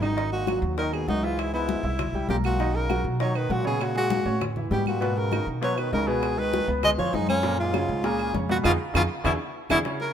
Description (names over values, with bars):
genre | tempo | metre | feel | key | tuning
Afro-Cuban jazz | 198 BPM | 4/4 | straight | unclear | A4 = 440 Hz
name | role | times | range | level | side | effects
warm tenor saxophone | melody | 0.0-10.1 s | Db4 to Eb5 | -27 LUFS | right 1 dB | none
bright trombone | second line | 0.0-9.8 s | F2 to Ab3 | -33 LUFS | left 5 dB | none
clear grand piano | accompaniment | 0.0-10.1 s | Bb2 to Fb6 | -30 LUFS | right 2 dB | none
upright bass | bass | 0.0-9.8 s | Ab1 to B2 | -29 LUFS | right 1 dB | none
bongos | percussion | 0.0-10.1 s | none | -35 LUFS | left 5 dB | none
claves | percussion | 0.0-9.8 s | none | -36 LUFS | right 10 dB | none
congas | percussion | 0.0-10.1 s | none | -34 LUFS | left 5 dB | none
room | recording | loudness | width
light reverb | minimal, uncompressed stereo recording | -23 LUFS | side -9 dB against mid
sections
0.2-9.9 A section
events
drum fill 0.0, 8.6-9.9; band accent 8.6-9.9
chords
0.2 Absus2; 1.4 Dbm7; 2.0 C7; 2.6 Bmaj9; 3.8 Gbadd9; 4.4 A7; 5.0 Abmadd9; 6.2 Db9; 7.4 Gbmaj9; 8.6 Fm7; 9.2 E7